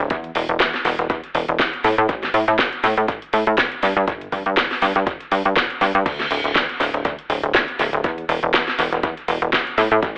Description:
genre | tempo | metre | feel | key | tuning
filtered disco house | 121 BPM | 4/4 | swing 55% on 16ths | unclear | A4 = 440 Hz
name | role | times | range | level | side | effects
plucky analog bass | bass | 0.0-10.2 s | D1 to A2 | -19 LUFS | equal | tube saturation, sidechain pumping, low-pass filter
electronic kick drum | drums | 0.1-10.1 s | none | -25 LUFS | equal | studio reverb
house drum kit | drums | 0.1-10.1 s | crash cymbal, hi-hat, snare drum | -21 LUFS | equal | sidechain pumping on hats, studio reverb, sidechain pumping on cymbals, tape echo
room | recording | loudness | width
moderate spring reverb, RT60 1.6 s | echo-heavy mix, telephone sound | -17 LUFS | side -31 dB against mid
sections
0.0-10.2 A section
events
none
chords
none

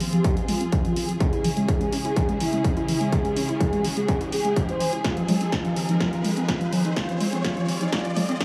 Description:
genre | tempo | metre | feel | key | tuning
melodic techno | 125 BPM | 4/4 | straight | F minor | A4 = 437 Hz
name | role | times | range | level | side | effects
dark studio string section | sustained chords | 0.0-8.4 s | Db3 to Ab4 | -33 LUFS | equal | sidechain pumping
warbly dusty pluck | arpeggios | 0.0-8.4 s | Eb3 to Ab4 | -29 LUFS | equal | chorus, sidechain pumping, dub echo
round analog bass | bass | 0.0-8.4 s | Ab1 to F2 | -43 LUFS | equal | none
punchy analog drum machine | drums | 0.0-8.4 s | congas, hi-hat, snare drum | -32 LUFS | equal | none
riser | sound effects | 1.4-8.4 s | none | -40 LUFS | equal | none
expressive synth lead | melody | 0.1-8.4 s | Eb4 to C5 | -32 LUFS | equal | chorus, sidechain pumping, dub echo
electronic kick drum | drums | 0.2-8.4 s | none | -28 LUFS | equal | distortion
room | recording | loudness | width
light reverb, digital ambience | high-pass filter, small room reverb | -24 LUFS | mono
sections
0.0-8.4 A section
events
build-up 0.0-8.4; filter sweep on analog synth lead 0.0-8.4; filter sweep 0.0-8.4; riser 1.4-8.4; drum fill 5.0-8.4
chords
0.0 Fm7; 1.2 Dbm; 5.0 Fm7

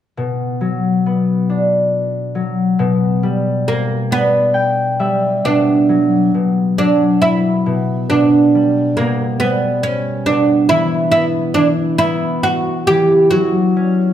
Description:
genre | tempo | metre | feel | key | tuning
children's music, lullaby | 46 BPM (dotted quarters) | 6/8 | rubato | B harmonic minor | A4 = 440 Hz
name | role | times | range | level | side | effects
concert harp | accompaniment | 0.2-14.1 s | B2 to G5 | -16 LUFS | left 2 dB | none
oud | melody | 3.7-14.1 s | A#3 to G4 | -15 LUFS | right 3 dB | none
room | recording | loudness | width
wet recital hall reverb, RT60 1.4 s | none | -13 LUFS | side -10 dB against mid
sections
0.2-5.4 A section; 5.4-14.1 B section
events
harp fill 4.1-5.4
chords
0.2 Bm; 2.8 G/B; 5.4 Bm; 8.1 G/B; 10.7 E5; 13.3 F#5

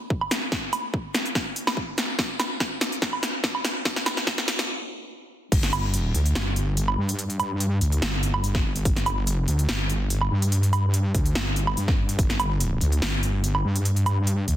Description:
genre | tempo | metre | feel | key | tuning
heavy wobble dubstep | 144 BPM | 4/4 | half-time | unclear | A4 = 440 Hz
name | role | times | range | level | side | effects
electronic kick drum | drums | 0.1-5.6, 8.5-12.3 s | none | -25 LUFS | equal | none
big-room dance drum kit | drums | 0.2-14.6 s | crash cymbal, hi-hat, snare drum, woodblock | -26 LUFS | right 1 dB | none
wobble bass | bass | 5.5-14.6 s | G1 to G2 | -23 LUFS | equal | chorus, overdrive
room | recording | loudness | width
light reverb | dense, heavily limited modern master, high-pass filter | -22 LUFS | side -12 dB against mid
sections
0.0-5.5 A section; 5.5-14.6 B section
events
build-up 0.0-5.5; drum fill 0.0-4.7; filter sweep 0.0-5.5; stop 4.7-5.5; drop 5.5-14.6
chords
none

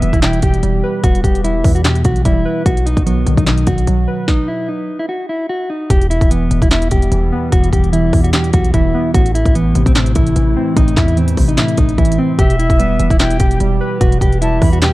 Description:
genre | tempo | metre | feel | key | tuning
hip hop, trap | 148 BPM | 4/4 | half-time | E harmonic minor | A4 = 436 Hz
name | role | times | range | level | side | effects
mellow electric guitar | melody | 0.0-14.9 s | B3 to G4 | -19 LUFS | equal | spring reverb
jazz flute | second line | 0.0-0.6, 12.4-14.9 s | E5 to B5 | -24 LUFS | left 1 dB | tape echo
warbly lo-fi synth keys | accompaniment | 0.0-14.9 s | E2 to B4 | -18 LUFS | right 1 dB | chorus
warbly tape-like pad | sustained chords | 0.1-14.9 s | C3 to G4 | -26 LUFS | equal | chorus, built-in reverb
hard-hitting 808-style bass | bass | 0.0-14.9 s | E1 to E2 | -16 LUFS | equal | none
trap drum kit | drums | 0.0-14.9 s | handclaps, hi-hat, kick drum, snare drum | -15 LUFS | equal | none
room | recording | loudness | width
little or no reverb | dark, warm production | -12 LUFS | side -17 dB against mid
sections
0.0-5.9 A section; 5.9-14.9 B section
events
stop 4.3-5.9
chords
0.0 Em; 2.7 B; 5.9 Em; 9.1 Am; 12.4 Em

